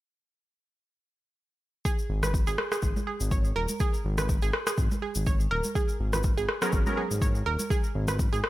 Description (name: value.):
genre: deep house.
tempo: 123 BPM.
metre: 4/4.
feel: swing 55% on 16ths.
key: G# minor.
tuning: A4 = 438 Hz.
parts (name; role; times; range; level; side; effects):
analog pluck; arpeggios; 1.9-8.4 s; G#4 to C#5; -33 LUFS; right 4 dB; chorus, sidechain pumping, tape echo.
electronic kick drum; drums; 1.9-8.3 s; none; -27 LUFS; equal; overdrive.
tube shaker; percussion; 1.9-8.4 s; none; -39 LUFS; left 1 dB; none.
smooth synth bass; bass; 2.1-8.4 s; D#1 to G#1; -30 LUFS; equal; sidechain pumping.
electronic rim click; drums; 2.2-8.5 s; none; -32 LUFS; left 1 dB; none.
congas; percussion; 2.2-8.2 s; none; -38 LUFS; right 3 dB; none.
warm analog keys; stabs; 6.6-7.0 s; F#3 to A#4; -31 LUFS; equal; chorus, phaser, sidechain pumping, tape echo.
room: little or no reverb.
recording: none.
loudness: -25 LUFS.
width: side -16 dB against mid.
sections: 1.9-8.5 A section.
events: none.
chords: none.